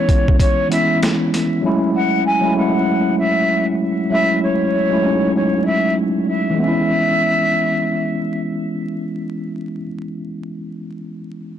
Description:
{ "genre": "hip hop, boom-bap hip-hop", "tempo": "97 BPM", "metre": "4/4", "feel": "swing 59% on 16ths", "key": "C# minor", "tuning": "A4 = 440 Hz", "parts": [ { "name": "breathy mellow jazz flute", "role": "melody", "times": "0.0-8.4 s", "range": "C#5 to G#5", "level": "-19 LUFS", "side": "left 1 dB", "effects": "high-pass filter, low-pass filter, digital delay" }, { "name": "mellow tine electric piano", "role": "accompaniment", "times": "0.0-11.6 s", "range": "E3 to E4", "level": "-18 LUFS", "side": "equal", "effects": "medium stereo tremolo, cassette tape, high-pass filter, low-pass filter" }, { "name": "boom bap sampler-style drum kit", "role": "drums", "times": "0.1-1.5 s", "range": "hi-hat, kick drum, snare drum", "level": "-17 LUFS", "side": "equal", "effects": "none" } ], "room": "light reverb", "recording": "blown-out, overdriven recording, vinyl crackle, overdrive", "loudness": "-15 LUFS", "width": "side -10 dB against mid", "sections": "0.0-6.6 A section; 6.6-9.1 B section", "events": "none", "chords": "0.0 C#m9; 1.6 F#m9; 6.6 C#m7", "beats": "0.40 1.02 | 1.64 2.26 2.88 3.50 | 4.11 4.73 5.35 5.97 | 6.59 7.21 7.83 8.44" }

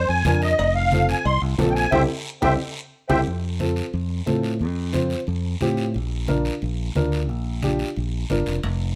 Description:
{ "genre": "latin, cumbia", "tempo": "179 BPM", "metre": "4/4", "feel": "straight", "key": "F major", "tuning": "A4 = 442 Hz", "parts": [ { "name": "musette accordion", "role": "melody", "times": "0.0-3.2 s", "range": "C5 to C6", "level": "-24 LUFS", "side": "equal", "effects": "none" }, { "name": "fingered electric bass", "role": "bass", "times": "0.0-9.0 s", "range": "F1 to A2", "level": "-26 LUFS", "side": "equal", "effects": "none" }, { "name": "congas", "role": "percussion", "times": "0.2-8.8 s", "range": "none", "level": "-30 LUFS", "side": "equal", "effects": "none" }, { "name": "dark upright piano", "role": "accompaniment", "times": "0.3-8.5 s", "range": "C4 to C5", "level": "-28 LUFS", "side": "equal", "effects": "none" }, { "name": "guiro", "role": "percussion", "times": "0.3-9.0 s", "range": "none", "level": "-39 LUFS", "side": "equal", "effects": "none" }, { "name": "cowbell and timbales", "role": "percussion", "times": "0.6-3.2, 8.6-8.8 s", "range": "none", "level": "-31 LUFS", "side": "equal", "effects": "none" } ], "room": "light reverb", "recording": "none", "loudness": "-23 LUFS", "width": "mono", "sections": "0.0-3.3 A section; 3.3-9.0 B section", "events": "accordion solo 0.0-3.3; band accent 1.9-3.3; drum fill 2.3-3.3", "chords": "0.0 Bb; 0.6 F; 1.9 C; 3.3 F; 5.9 Bb", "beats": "0.26 | 0.59 0.92 1.26 1.59 | 1.93 2.26 2.60 2.93 | 3.26 3.60 3.94 4.27 | 4.61 4.94 5.28 5.61 | 5.95 6.28 6.62 6.96 | 7.29 7.63 7.96 8.30 | 8.63" }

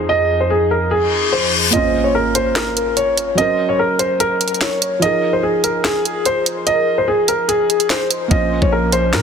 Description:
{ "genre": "hip hop, drill", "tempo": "146 BPM", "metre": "4/4", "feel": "half-time", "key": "F phrygian", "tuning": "A4 = 440 Hz", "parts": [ { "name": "felt-muted upright piano", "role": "accompaniment", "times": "0.0-9.2 s", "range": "F3 to Bb4", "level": "-24 LUFS", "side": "right 5 dB", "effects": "low-pass filter" }, { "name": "hollow soft pad", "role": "sustained chords", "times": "0.0-1.7, 8.3-9.2 s", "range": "F2 to Ab4", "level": "-24 LUFS", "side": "equal", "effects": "chorus" }, { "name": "dark concert grand piano", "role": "melody", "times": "0.1-9.2 s", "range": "Ab4 to Eb5", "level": "-16 LUFS", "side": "equal", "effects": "low-pass filter, ping-pong delay" }, { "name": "reverse cymbal and impact", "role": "sound effects", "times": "1.1-3.4 s", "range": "none", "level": "-20 LUFS", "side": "left 3 dB", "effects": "none" }, { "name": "warm velvety synth lead", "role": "second line", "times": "1.7-8.7 s", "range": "Ab4 to Db5", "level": "-25 LUFS", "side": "left 7 dB", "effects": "chorus, ping-pong delay" }, { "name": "drill drum kit", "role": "drums", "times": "1.7-9.2 s", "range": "handclaps, hi-hat, kick drum, snare drum", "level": "-18 LUFS", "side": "right 1 dB", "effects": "none" }, { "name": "growling 808-style bass", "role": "bass", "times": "8.3-9.2 s", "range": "Bb1 to Bb2", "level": "-19 LUFS", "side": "equal", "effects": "none" } ], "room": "light reverb, digital ambience", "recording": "dense, heavily limited modern master", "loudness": "-14 LUFS", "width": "side -6 dB against mid", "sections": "0.0-1.7 A section; 1.7-9.2 B section", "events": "reverse cymbal 1.1-1.7; kick muted 1.7-8.3; impact 1.7-3.4", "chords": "0.0 Fm7; 1.7 Bbm; 3.4 Gb; 5.0 Fm7; 8.3 Bbm", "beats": "| 0.09 0.50 0.91 1.32 | 1.74 2.15 2.56 2.97 | 3.38 3.79 4.20 4.61 | 5.02 5.43 5.84 6.26 | 6.67 7.08 7.49 7.90 | 8.31 8.72 9.13" }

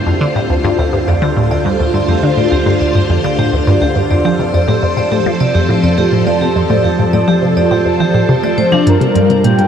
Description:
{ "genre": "ambient, sequencer-driven space music", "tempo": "104 BPM", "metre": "4/4", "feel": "straight", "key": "unclear", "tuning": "A4 = 440 Hz", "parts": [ { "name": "phased string machine", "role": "sustained chords", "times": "0.0-9.7 s", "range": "D2 to C5", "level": "-15 LUFS", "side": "left 1 dB", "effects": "ensemble chorus, phaser" }, { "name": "vibraphone with hard mallets", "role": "arpeggios", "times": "0.0-8.8 s", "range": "D4 to D5", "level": "-18 LUFS", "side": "moving between left 1 dB and right 5 dB", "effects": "auto-pan, ping-pong delay" }, { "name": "resonant blip pluck", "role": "riff", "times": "0.1-9.7 s", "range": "D2 to A3", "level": "-14 LUFS", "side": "equal", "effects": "phaser, ping-pong delay" }, { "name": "breathy flute-like synth lead", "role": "melody", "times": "8.9-9.7 s", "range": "Bb4 to G5", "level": "-16 LUFS", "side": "right 1 dB", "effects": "ensemble chorus" }, { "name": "electronic hi-hat", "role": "percussion", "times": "8.9-9.7 s", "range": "none", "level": "-31 LUFS", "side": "right 2 dB", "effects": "none" } ], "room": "wet huge ambient reverb, RT60 8.4 s", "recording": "dark, warm production", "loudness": "-10 LUFS", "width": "side -8 dB against mid", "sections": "0.0-8.9 A section", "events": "none", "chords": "0.0 Dm7; 4.3 F; 8.9 Gm7", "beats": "0.21 0.79 1.37 | 1.94 2.52 3.10 3.67 | 4.25 4.83 5.41 5.98 | 6.56 7.14 7.71 8.29 | 8.87 9.44" }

